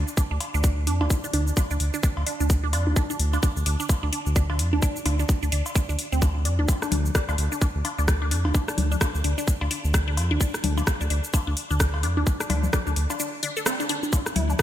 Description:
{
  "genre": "minimal techno",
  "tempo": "129 BPM",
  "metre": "4/4",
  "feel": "swing 59% on 16ths",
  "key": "D minor",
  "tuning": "A4 = 440 Hz",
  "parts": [
    { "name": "round analog bass", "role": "bass", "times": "0.0-14.5 s", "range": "D2 to F2", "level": "-24 LUFS", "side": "equal", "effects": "sidechain pumping" },
    { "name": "garage drum kit", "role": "drums", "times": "0.1-14.6 s", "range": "hi-hat, rim click, shaker", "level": "-30 LUFS", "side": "left 1 dB", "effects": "studio reverb" },
    { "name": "resonant blip pluck", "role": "riff", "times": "0.2-14.5 s", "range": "C4 to A4", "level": "-30 LUFS", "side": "equal", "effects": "phaser, sidechain pumping, analog delay" },
    { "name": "electronic kick drum", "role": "drums", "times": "0.2-14.6 s", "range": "none", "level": "-21 LUFS", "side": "equal", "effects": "studio reverb" },
    { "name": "cowbell, bongos and congas", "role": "percussion", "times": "0.4-14.5 s", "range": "none", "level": "-32 LUFS", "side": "left 2 dB", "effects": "studio reverb, diffuse ambient delay" }
  ],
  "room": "light reverb",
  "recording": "none",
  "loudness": "-22 LUFS",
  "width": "side -12 dB against mid",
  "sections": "0.0-14.6 A section",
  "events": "none",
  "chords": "0.0 D5"
}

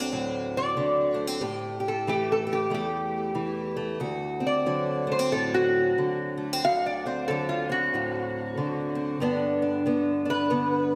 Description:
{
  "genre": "acoustic country blues, solo or duo",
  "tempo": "92 BPM",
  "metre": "4/4",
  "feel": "swing 60% on 8ths",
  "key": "D mixolydian",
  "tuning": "A4 = 437 Hz",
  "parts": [
    { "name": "fingerpicked steel-string acoustic guitar", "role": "accompaniment", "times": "0.0-11.0 s", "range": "D2 to G4", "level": "-30 LUFS", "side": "equal", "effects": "analog chorus" },
    { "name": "lap resonator guitar", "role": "melody", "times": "0.6-11.0 s", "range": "F4 to F5", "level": "-29 LUFS", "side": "equal", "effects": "analog chorus, tape echo" }
  ],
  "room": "wet lush hall reverb, RT60 2.1 s",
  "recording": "dreamy mix soaked in reverb",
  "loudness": "-27 LUFS",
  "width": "mono",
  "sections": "0.0-4.0 A section; 4.0-11.0 B section",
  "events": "resonator guitar played with a steel bar solo 4.0-11.0",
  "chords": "0.0 D7; 1.4 A5; 4.0 D7; 9.2 G"
}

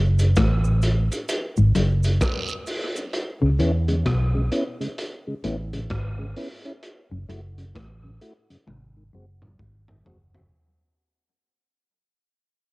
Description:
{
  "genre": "dub reggae",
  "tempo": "65 BPM",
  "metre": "4/4",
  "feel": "swing 62% on 16ths",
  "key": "C# minor",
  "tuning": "A4 = 440 Hz",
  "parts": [
    { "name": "mellow tonewheel organ", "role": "accompaniment", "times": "0.0-10.4 s", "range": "F#2 to F#4", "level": "-29 LUFS", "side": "equal", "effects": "overdrive, chorus vibrato, slow rotary speaker, high-pass filter, cassette tape" },
    { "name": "semi-hollow electric guitar", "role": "riff", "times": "0.0-10.3 s", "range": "F#2 to E3", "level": "-26 LUFS", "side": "left 2 dB", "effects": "cassette tape" },
    { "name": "vintage muted fingered electric bass", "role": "bass", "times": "0.0-10.5 s", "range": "F#1 to E2", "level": "-21 LUFS", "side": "equal", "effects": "none" },
    { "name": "crunchy breakbeat drum kit", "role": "drums", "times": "0.2-10.5 s", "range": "hi-hat, kick drum, rim click, toms", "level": "-28 LUFS", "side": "equal", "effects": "cassette tape" },
    { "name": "cabasa and guiro", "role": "percussion", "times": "0.2-3.1 s", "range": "none", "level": "-36 LUFS", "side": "right 5 dB", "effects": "high-pass filter on perc, dub echo" }
  ],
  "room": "light reverb, studio reverb",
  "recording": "home recording on cassette",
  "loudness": "-21 LUFS",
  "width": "side -24 dB against mid",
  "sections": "0.0-10.5 A section",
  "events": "fade-out 0.0-10.5; break 3.1-10.5; drum fill 8.7-10.5",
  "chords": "0.0 F#m7; 3.1 C#m7; 6.8 F#m7; 8.7 G#7"
}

